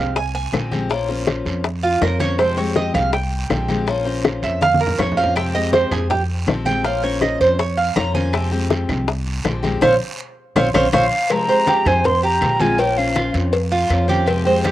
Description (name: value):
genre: latin, Cuban son and guajira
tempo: 162 BPM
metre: 4/4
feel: straight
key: F minor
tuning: A4 = 440 Hz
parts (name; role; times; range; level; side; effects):
- picked steel-string acoustic guitar; accompaniment; 0.0-14.7 s; C3 to C5; -24 LUFS; left 4 dB; cassette tape
- Cuban tres; arpeggios; 0.0-14.7 s; F4 to Bb5; -19 LUFS; right 3 dB; cassette tape, plate reverb
- upright bass; bass; 0.0-14.7 s; Bb1 to F2; -22 LUFS; equal; none
- bongos and cowbell; percussion; 0.2-14.7 s; none; -22 LUFS; left 5 dB; none
- congas; percussion; 0.2-14.7 s; none; -26 LUFS; left 1 dB; none
- guiro; percussion; 0.2-14.7 s; none; -33 LUFS; right 4 dB; none
- claves; percussion; 0.5-14.5 s; none; -30 LUFS; left 5 dB; none
- breathy silver concert flute; melody; 10.9-13.3 s; F5 to C6; -19 LUFS; left 1 dB; cassette tape
room: light reverb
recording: home recording on cassette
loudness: -16 LUFS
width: side -14 dB against mid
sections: 0.0-11.3 A section; 11.3-14.7 B section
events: Cuban tres solo 0.0-11.3; drum fill 4.6-5.4, 10.2-11.3; band accent 9.8-11.3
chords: 0.0 Fmadd9; 0.9 Bbmadd9; 2.4 Fmadd9; 3.9 Bbmadd9; 5.4 Fmadd9; 6.8 Bbmadd9; 8.3 Fmadd9; 9.8 Bbmadd9; 11.3 Fmadd9; 12.8 Bbmadd9